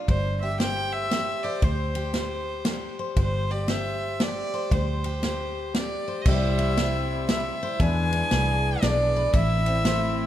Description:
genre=honky-tonk and classic country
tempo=117 BPM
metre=3/4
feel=swing 63% on 8ths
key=unclear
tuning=A4 = 441 Hz
part: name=picked steel-string acoustic guitar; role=accompaniment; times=0.0-10.3 s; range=A2 to C5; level=-30 LUFS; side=left 2 dB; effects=none
part: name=clear fiddle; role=melody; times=0.1-10.3 s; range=C5 to G#5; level=-29 LUFS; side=right 1 dB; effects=none
part: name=vintage muted fingered electric bass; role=bass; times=0.1-10.3 s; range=G1 to E2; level=-27 LUFS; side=equal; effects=none
part: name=natural country drum kit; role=drums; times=0.1-10.0 s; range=crash cymbal, kick drum, ride cymbal, snare drum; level=-27 LUFS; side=equal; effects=none
part: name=warm studio string section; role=sustained chords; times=6.3-10.3 s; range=C3 to G#4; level=-33 LUFS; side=left 1 dB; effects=none
room=light reverb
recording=dark, warm production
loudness=-22 LUFS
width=side -12 dB against mid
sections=0.0-6.3 A section; 6.3-10.3 B section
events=none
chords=0.1 Gsus4; 6.3 C; 7.8 E7; 9.3 Am

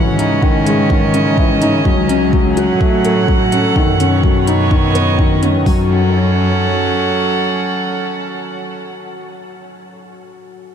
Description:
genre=piano and strings electronica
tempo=126 BPM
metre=4/4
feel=straight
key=F# dorian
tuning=A4 = 440 Hz
part: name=rich string quartet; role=sustained chords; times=0.0-8.9 s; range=B2 to F#5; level=-18 LUFS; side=right 3 dB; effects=sidechain pumping
part: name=felt-muted upright piano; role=riff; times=0.0-10.7 s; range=D#3 to A4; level=-17 LUFS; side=left 2 dB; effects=wide subtle chorus, analog delay
part: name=warm studio cello section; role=bass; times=0.0-7.1 s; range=C#2 to B2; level=-18 LUFS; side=equal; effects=sidechain pumping
part: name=organic electronic drum kit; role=drums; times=0.2-5.5 s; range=hi-hat, toms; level=-29 LUFS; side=right 2 dB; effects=overdrive
part: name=organic electronic drum kit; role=drums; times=0.4-5.8 s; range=hi-hat, kick drum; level=-15 LUFS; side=equal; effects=overdrive
room=moderate huge ambient reverb, RT60 8.7 s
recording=dreamy mix soaked in reverb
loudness=-12 LUFS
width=side -8 dB against mid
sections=0.0-5.7 A section; 5.7-9.5 B section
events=drop 0.0-5.7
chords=0.0 C#madd9; 1.9 F#m; 3.8 Badd9; 5.7 F#m

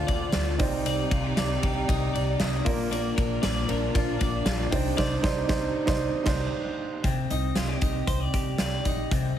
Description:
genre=jangly indie pop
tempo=116 BPM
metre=4/4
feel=straight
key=unclear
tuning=A4 = 438 Hz
part: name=warm upright piano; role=accompaniment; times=0.0-7.1 s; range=Eb4 to D5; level=-31 LUFS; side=right 5 dB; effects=none
part: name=dark studio string section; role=sustained chords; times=0.0-7.0 s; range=C3 to D5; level=-35 LUFS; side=right 1 dB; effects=none
part: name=twelve-string electric guitar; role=arpeggios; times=0.0-9.4 s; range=C3 to D5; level=-29 LUFS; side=left 3 dB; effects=none
part: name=upright bass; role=bass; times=0.0-9.3 s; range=Bb1 to D2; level=-30 LUFS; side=equal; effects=none
part: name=big rock drum kit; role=drums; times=0.1-9.2 s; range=crash cymbal, hi-hat, kick drum, ride cymbal, snare drum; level=-28 LUFS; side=equal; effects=none
room=light reverb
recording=heavily compressed radio sound, multiband compression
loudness=-24 LUFS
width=side -10 dB against mid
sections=0.0-7.0 A section; 7.0-9.4 B section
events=band accent 5.0-7.0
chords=0.0 Dm7; 0.6 Cmadd9; 2.7 Bb; 4.7 Cmadd9

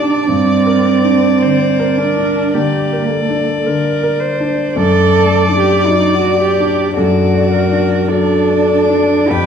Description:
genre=classical, slow romantic movement for piano quartet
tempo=54 BPM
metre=4/4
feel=rubato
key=unclear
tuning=A4 = 440 Hz
part: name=warm violin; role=melody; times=0.0-9.5 s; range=D5 to G5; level=-19 LUFS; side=left 8 dB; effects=none
part: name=dark cello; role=second line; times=0.0-9.5 s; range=Bb3 to B4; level=-15 LUFS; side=right 7 dB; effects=none
part: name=warm grand piano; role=accompaniment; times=0.0-9.5 s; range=F2 to D5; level=-16 LUFS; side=left 2 dB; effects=none
part: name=warm viola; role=accompaniment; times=0.0-9.5 s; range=G4 to D5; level=-19 LUFS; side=right 2 dB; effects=none
room=wet recital hall reverb, RT60 1.4 s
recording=dark, warm production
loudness=-11 LUFS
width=side -7 dB against mid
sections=0.0-9.5 A section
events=none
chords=0.3 Gm; 4.8 D/F#

